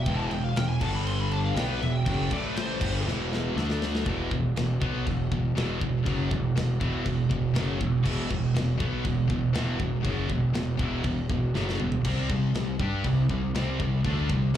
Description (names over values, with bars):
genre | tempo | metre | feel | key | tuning
heavy metal | 120 BPM | 4/4 | straight | E minor | A4 = 440 Hz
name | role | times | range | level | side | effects
high-gain lead guitar | melody | 0.0-3.0 s | B4 to C6 | -34 LUFS | equal | distortion, slapback echo, digital delay
heavy high-gain guitar | riff | 0.0-14.6 s | E2 to G4 | -31 LUFS | left 7 dB | distortion
fuzz picked electric bass | bass | 0.0-14.6 s | E1 to G2 | -29 LUFS | equal | overdrive
scooped high-gain guitar | riff | 0.1-14.5 s | E2 to G4 | -30 LUFS | right 7 dB | distortion
tight metal drum kit | drums | 0.1-14.6 s | china cymbal, crash cymbal, kick drum, snare drum, toms | -33 LUFS | equal | none
room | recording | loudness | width
small room ambience | live gig heard through the venue's PA, club reverb | -24 LUFS | side -10 dB against mid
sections
0.0-4.1 A section; 4.1-14.6 B section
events
lead electric guitar solo 0.0-4.1; drum fill 3.1-4.1, 11.6-12.0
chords
0.0 E5; 0.8 G5; 1.6 E5; 2.3 A5; 2.8 Em; 3.6 D5; 4.1 E5; 12.0 C5